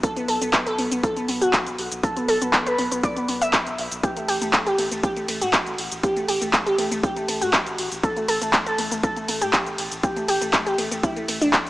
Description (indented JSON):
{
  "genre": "progressive house",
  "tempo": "120 BPM",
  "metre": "4/4",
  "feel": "straight",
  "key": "unclear",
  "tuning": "A4 = 438 Hz",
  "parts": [
    { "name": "glassy wavetable pluck", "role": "arpeggios", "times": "0.0-11.7 s", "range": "A3 to E5", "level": "-23 LUFS", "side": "equal", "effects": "chorus, sidechain pumping, tape echo" },
    { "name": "electronic kick drum", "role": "drums", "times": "0.0-11.6 s", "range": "none", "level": "-25 LUFS", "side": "equal", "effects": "none" },
    { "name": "house drum kit", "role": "drums", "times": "0.0-11.7 s", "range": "handclaps, hi-hat, ride cymbal, shaker", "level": "-24 LUFS", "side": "equal", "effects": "overdrive" },
    { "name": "round analog bass", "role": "bass", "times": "0.2-11.7 s", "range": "F#1 to A2", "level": "-39 LUFS", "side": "equal", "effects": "tube saturation, sidechain pumping" }
  ],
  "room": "light reverb, digital ambience",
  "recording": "small speaker sound",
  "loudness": "-20 LUFS",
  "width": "side -18 dB against mid",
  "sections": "0.0-11.7 A section",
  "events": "none",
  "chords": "0.0 B5; 4.0 Gsus2",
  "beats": "| 0.04 0.54 1.03 1.53 | 2.04 2.54 3.04 3.54 | 4.04 4.54 5.04 5.54 | 6.04 6.54 7.04 7.54 | 8.04 8.54 9.04 9.54 | 10.04 10.54 11.04 11.54"
}